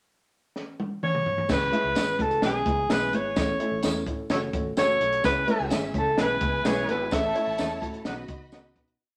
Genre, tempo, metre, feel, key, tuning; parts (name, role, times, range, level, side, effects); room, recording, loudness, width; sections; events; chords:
uptempo 1960s-style soul; 128 BPM; 4/4; straight; E major; A4 = 438 Hz
compact cocktail drum kit; drums; 0.6-9.0 s; crash cymbal, hi-hat, kick drum, snare drum, toms; -32 LUFS; equal; vintage 12-bit sampler grit
breathy alto saxophone; melody; 1.0-7.8 s; G#4 to E5; -28 LUFS; equal
dark upright piano; accompaniment; 1.5-8.9 s; G#3 to E5; -33 LUFS; equal
vintage muted fingered electric bass; bass; 1.5-9.0 s; F#1 to C#3; -39 LUFS; equal
tambourine; percussion; 1.5-8.6 s; -44 LUFS; equal
mellow horn section; second line; 2.4-9.0 s; D#4 to C#5; -38 LUFS; equal
rich studio violin section; second line; 5.2-9.0 s; C#4 to B5; -39 LUFS; equal
wet studio reverb, RT60 0.9 s; -26 LUFS; mono
0.0-1.5 pickup bar; 1.5-9.0 pre-chorus
drum fill 0.6-1.5; fade-out 7.1-9.0
0.0 N.C.; 1.5 C#m; 2.4 E/B; 3.4 A; 4.3 F#m; 5.2 C#m; 6.2 E/B; 7.1 A; 8.1 B